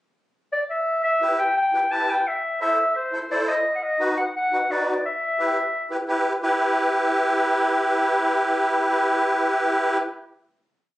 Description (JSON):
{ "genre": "latin", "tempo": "172 BPM", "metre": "4/4", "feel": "straight", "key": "E harmonic minor", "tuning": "A4 = 439 Hz", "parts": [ { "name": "warm clarinet", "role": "melody", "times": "0.5-6.1 s", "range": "C5 to A5", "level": "-21 LUFS", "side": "left 1 dB", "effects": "slapback echo, plate reverb" }, { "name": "musette accordion", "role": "accompaniment", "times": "1.2-10.0 s", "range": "D#4 to C5", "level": "-21 LUFS", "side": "equal", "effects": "none" } ], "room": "moderate studio reverb, RT60 0.7 s", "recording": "recorded on a phone in the room, club reverb", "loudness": "-20 LUFS", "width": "side -16 dB against mid", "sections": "0.0-0.9 pickup bar; 0.9-6.4 A section; 6.4-9.2 final chord", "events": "none", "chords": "0.0 N.C.; 0.9 Em; 2.3 Am; 3.7 B; 5.0 Em", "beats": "0.17 0.52 | 0.87 1.22 1.56 1.91 | 2.26 2.61 2.96 3.30 | 3.65 4.00 4.35 4.70 | 5.04 5.39 5.74 6.09 | 6.44 6.79 7.13 7.48 | 7.83 8.18 8.53 8.87" }